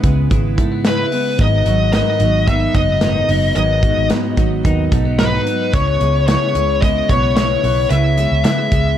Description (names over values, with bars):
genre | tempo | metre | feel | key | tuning
jangly indie pop | 111 BPM | 4/4 | straight | C# minor | A4 = 441 Hz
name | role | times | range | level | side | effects
picked steel-string acoustic guitar | accompaniment | 0.0-9.0 s | G#2 to E4 | -23 LUFS | right 9 dB | none
twelve-string electric guitar | arpeggios | 0.0-9.0 s | G#2 to E4 | -21 LUFS | left 2 dB | lush chorus
vintage muted fingered electric bass | bass | 0.0-8.9 s | F#1 to C#3 | -18 LUFS | equal | none
modern studio drum kit | drums | 0.0-8.8 s | hi-hat, kick drum, snare drum | -18 LUFS | equal | gated reverb
high-gain lead guitar | melody | 0.9-9.0 s | B4 to E5 | -18 LUFS | left 4 dB | distortion, tape echo
room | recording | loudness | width
light reverb | none | -13 LUFS | side -10 dB against mid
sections
0.0-9.0 A section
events
none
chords
0.0 C#m7; 1.4 G#m7; 5.7 C#m7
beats
0.31 0.85 | 1.39 1.94 2.48 3.02 | 3.56 4.11 4.65 5.19 | 5.73 6.28 6.82 7.36 | 7.90 8.45